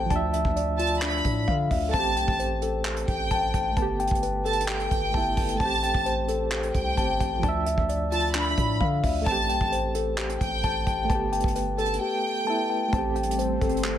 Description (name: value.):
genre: hip hop, trap.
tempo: 131 BPM.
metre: 4/4.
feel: half-time.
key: A minor.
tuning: A4 = 439 Hz.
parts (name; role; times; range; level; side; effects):
warm studio violin section; second line; 0.0-12.9 s; G5 to B5; -29 LUFS; right 1 dB; tape echo.
soft electric-piano-like synth keys; accompaniment; 0.0-14.0 s; F3 to E5; -31 LUFS; right 4 dB; chorus, tremolo, low-pass filter.
mellow tine electric piano; arpeggios; 0.0-14.0 s; D4 to A5; -28 LUFS; left 4 dB; low-pass filter, tape echo.
long sustained 808-style bass; bass; 0.0-14.0 s; G1 to D3; -30 LUFS; right 1 dB; none.
soft brush drum kit; drums; 0.1-14.0 s; handclaps, hi-hat, kick drum; -30 LUFS; right 1 dB; vintage 12-bit sampler grit.
ethereal airy pad; sustained chords; 13.2-14.0 s; G3 to C4; -30 LUFS; equal; ensemble chorus, built-in reverb.
room: light reverb, small room ambience.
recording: none.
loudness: -23 LUFS.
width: side -10 dB against mid.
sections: 0.0-12.9 A section; 12.9-14.0 B section.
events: none.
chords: 0.1 Dmadd9; 1.9 Am7; 3.8 Gadd9; 5.6 Am7; 7.4 Dmadd9; 9.3 Am7; 11.1 Gadd9; 12.9 Am7.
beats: | 0.10 0.56 1.02 1.48 | 1.94 2.39 2.85 3.31 | 3.77 4.23 4.68 5.14 | 5.60 6.06 6.52 6.97 | 7.43 7.89 8.35 8.81 | 9.27 9.72 10.18 10.64 | 11.10 11.55 12.01 12.47 | 12.93 13.39 13.85.